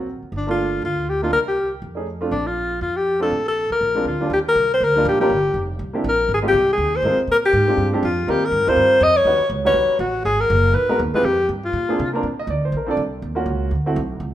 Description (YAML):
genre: jazz, small-group swing and bop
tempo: 242 BPM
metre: 4/4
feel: swing 58% on 8ths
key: Bb major, Eb major from 4.3 s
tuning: A4 = 440 Hz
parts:
  - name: clear grand piano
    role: accompaniment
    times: 0.0-14.0 s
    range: Eb2 to Eb5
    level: -24 LUFS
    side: right 2 dB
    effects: none
  - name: upright bass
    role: bass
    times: 0.0-14.3 s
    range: F1 to C3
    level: -25 LUFS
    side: right 1 dB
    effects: none
  - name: breathy alto saxophone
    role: melody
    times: 0.4-12.1 s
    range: D4 to Eb5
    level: -18 LUFS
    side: left 1 dB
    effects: none
room: moderate large studio reverb, RT60 1.3 s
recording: minimal, uncompressed stereo recording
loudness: -17 LUFS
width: side -12 dB against mid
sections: 0.0-4.3 A section; 4.3-12.2 B section; 12.2-14.3 C section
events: none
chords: 0.3 Gm9; 1.3 C5; 1.8 F7alt; 2.3 Bbmaj7(no3); 3.8 Bb9; 4.3 Ebmaj9; 5.3 Fsus2; 5.8 C7; 6.3 Fm9; 7.3 Bb13; 8.3 Eb69; 9.3 Eb7alt; 10.3 Abm7; 11.2 Fsus2; 11.7 Bb9; 12.2 Bbadd9; 13.2 Ebm9; 13.7 D9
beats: 0.07 | 0.32 0.57 0.82 1.07 | 1.32 1.57 1.82 2.07 | 2.32 2.56 2.81 3.06 | 3.31 3.56 3.81 4.06 | 4.31 4.56 4.80 5.05 | 5.30 5.55 5.80 6.04 | 6.29 6.54 6.79 7.04 | 7.28 7.53 7.78 8.03 | 8.27 8.52 8.77 9.02 | 9.26 9.51 9.76 10.01 | 10.25 10.50 10.75 10.99 | 11.24 11.49 11.74 11.99 | 12.23 12.48 12.73 12.98 | 13.22 13.47 13.72 13.97 | 14.22